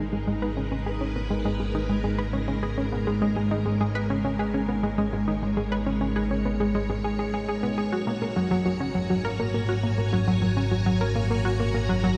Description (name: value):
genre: ambient, sequencer-driven space music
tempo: 102 BPM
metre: 4/4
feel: straight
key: G# minor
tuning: A4 = 440 Hz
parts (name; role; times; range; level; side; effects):
- string machine, full ensemble; sustained chords; 0.0-12.2 s; G#3 to A#5; -32 LUFS; equal; ensemble chorus, shimmer reverb
- analog pluck; riff; 0.0-12.2 s; F#3 to B4; -29 LUFS; equal; chorus, tape echo, shimmer reverb
- fat analog bass; bass; 0.0-12.2 s; G#1; -32 LUFS; equal; none
room: wet cathedral reverb, RT60 6.7 s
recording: in a vast, echoing space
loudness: -26 LUFS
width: mono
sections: 0.0-12.2 A section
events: none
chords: 0.0 G#m; 7.9 F#/G#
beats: 0.28 | 0.86 1.45 2.04 2.63 | 3.22 3.80 4.39 4.98 | 5.57 6.16 6.75 7.33 | 7.92 8.51 9.10 9.69 | 10.28 10.86 11.45 12.04